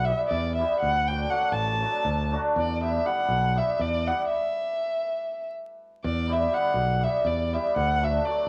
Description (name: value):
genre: balkan folk, Balkan wedding band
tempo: 242 BPM (eighths)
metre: 7/8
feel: straight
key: E minor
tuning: A4 = 442 Hz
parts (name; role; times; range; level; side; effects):
- dark violin; melody; 0.0-8.5 s; D5 to A5; -29 LUFS; equal; none
- hammered dulcimer; accompaniment; 0.0-8.5 s; F#3 to G4; -31 LUFS; equal; none
- modern bright fingered electric bass; bass; 0.0-8.5 s; A1 to E2; -31 LUFS; equal; none
room: wet large studio reverb, RT60 0.9 s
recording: vinyl crackle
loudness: -26 LUFS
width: mono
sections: 0.0-6.0 A section; 6.0-8.5 A section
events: stop 4.3-6.0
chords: 0.0 Em; 0.8 D; 2.6 Em; 4.3 N.C.; 6.0 Em; 7.8 D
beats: 0.07 0.32 0.57 | 0.82 1.07 1.31 1.56 1.81 2.06 2.30 | 2.55 2.80 3.05 3.30 3.54 3.79 4.04 | 4.29 4.54 4.78 5.03 5.28 5.53 5.78 | 6.02 6.27 6.52 6.77 7.02 7.26 7.51 | 7.76 8.01 8.26